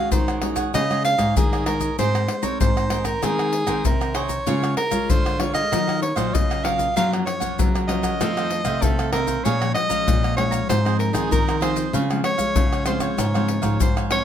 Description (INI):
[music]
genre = samba and choro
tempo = 96 BPM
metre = 4/4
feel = straight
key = Db major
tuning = A4 = 440 Hz
[part]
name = breathy soprano saxophone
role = melody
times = 0.0-14.2 s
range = Ab4 to F5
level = -24 LUFS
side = right 1 dB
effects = none
[part]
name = cavaquinho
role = accompaniment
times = 0.0-14.2 s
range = Eb4 to Bb5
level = -30 LUFS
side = right 8 dB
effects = none
[part]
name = nylon-string guitar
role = accompaniment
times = 0.0-14.2 s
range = F2 to Bb4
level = -27 LUFS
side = left 3 dB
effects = none
[part]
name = nylon-string guitar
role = bass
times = 0.1-14.2 s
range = Ab2 to Gb3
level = -25 LUFS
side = right 1 dB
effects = none
[part]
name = maracas, surdo, pandeiro and tamborim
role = percussion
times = 0.1-14.2 s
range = none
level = -24 LUFS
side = left 2 dB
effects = none
[sound]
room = light reverb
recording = close, detailed microphones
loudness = -19 LUFS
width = side -9 dB against mid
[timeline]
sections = 0.0-14.2 A section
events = none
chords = 0.0 Ab7sus4/Eb; 0.7 Dbsus2; 2.0 Abadd9; 4.5 Db6; 5.7 Ebmadd9; 7.0 Gbmaj7; 8.2 F7; 9.5 Bbm7; 10.7 Ab6; 11.9 Dbmaj7